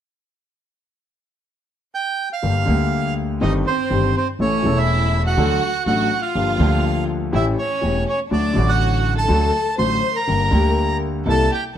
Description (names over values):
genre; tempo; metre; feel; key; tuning
tango; 123 BPM; 4/4; rubato; G minor; A4 = 440 Hz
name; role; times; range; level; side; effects
bandoneon; melody; 1.9-11.6 s; C5 to C6; -22 LUFS; right 4 dB; none
clear concert grand piano; accompaniment; 2.4-11.5 s; E1 to A4; -21 LUFS; left 3 dB; none
upright bass; bass; 2.4-11.8 s; E1 to D2; -22 LUFS; right 1 dB; none
warm studio violin section; second line; 3.4-11.8 s; C4 to C5; -25 LUFS; equal; none
room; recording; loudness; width
moderate studio reverb, RT60 0.9 s; none; -17 LUFS; side -10 dB against mid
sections
0.5-2.4 A section; 2.4-11.8 B section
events
none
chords
0.5 N.C.; 2.4 Gm; 3.4 Cm/G; 4.4 A; 5.4 D; 6.4 Gm7; 7.3 A7; 8.3 D; 10.3 Gm; 11.3 C7